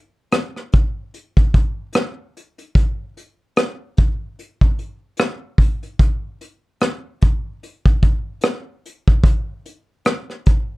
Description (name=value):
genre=hip hop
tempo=74 BPM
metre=4/4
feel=swing 60% on 16ths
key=none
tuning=none
part: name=vintage brush drum kit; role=drums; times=0.3-10.7 s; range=hi-hat, kick drum, rim click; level=-15 LUFS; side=equal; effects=none
room=light reverb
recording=dark, warm production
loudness=-17 LUFS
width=side -21 dB against mid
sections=0.0-9.2 A section; 9.2-10.8 B section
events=none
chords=none